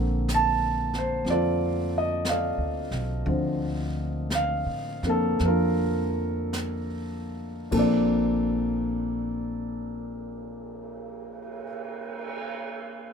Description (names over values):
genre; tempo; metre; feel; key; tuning
jazz ballad; 49-63 BPM; 4/4; swing 68% on 8ths; Bb major; A4 = 439 Hz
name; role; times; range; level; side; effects
warm concert grand piano; accompaniment; 0.0-13.1 s; Bb2 to A5; -26 LUFS; equal; none
upright bass; bass; 0.0-11.6 s; Bb1 to A2; -30 LUFS; right 1 dB; none
jazz brush drum kit; drums; 0.3-12.4 s; brushed snare drum, crash cymbal, cymbal swell, hi-hat, kick drum, snare drum; -36 LUFS; right 2 dB; none
room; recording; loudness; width
moderate club reverb, RT60 0.5 s; none; -24 LUFS; side -6 dB against mid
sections
0.0-7.7 A section; 7.7-12.6 B section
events
slowing down 0.0-7.7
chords
0.0 Bbmaj9